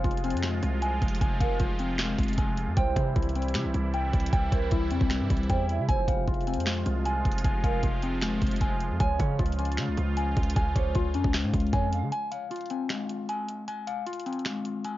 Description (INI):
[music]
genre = hip hop, trap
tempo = 154 BPM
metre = 4/4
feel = half-time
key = F harmonic minor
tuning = A4 = 444 Hz
[part]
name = sweeping resonant pad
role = sustained chords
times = 0.0-12.1 s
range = C3 to F4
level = -36 LUFS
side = right 3 dB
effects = chorus
[part]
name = mellow electric guitar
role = arpeggios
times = 0.0-15.0 s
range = G3 to Ab5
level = -31 LUFS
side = left 3 dB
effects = phaser, low-pass filter, ping-pong delay
[part]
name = hard-hitting 808-style bass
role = bass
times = 0.0-12.1 s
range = F1 to Db3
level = -29 LUFS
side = equal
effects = none
[part]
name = trap drum kit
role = drums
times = 0.0-14.9 s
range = finger snaps, hi-hat, kick drum, snare drum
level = -28 LUFS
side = equal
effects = none
[part]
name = mellow hollow polished pan flute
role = second line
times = 1.4-12.1 s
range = Bb4 to F5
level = -38 LUFS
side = right 7 dB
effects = ping-pong delay
[sound]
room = little or no reverb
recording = worn, warbling old tape, cassette tape, warbly pitch drift, nothing above 7.5 kHz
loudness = -25 LUFS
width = side -15 dB against mid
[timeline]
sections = 0.0-12.1 A section; 12.1-15.0 B section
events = break 12.1-15.0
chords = 0.0 Fm; 2.8 C; 5.9 Fm; 9.0 Db; 12.1 Fm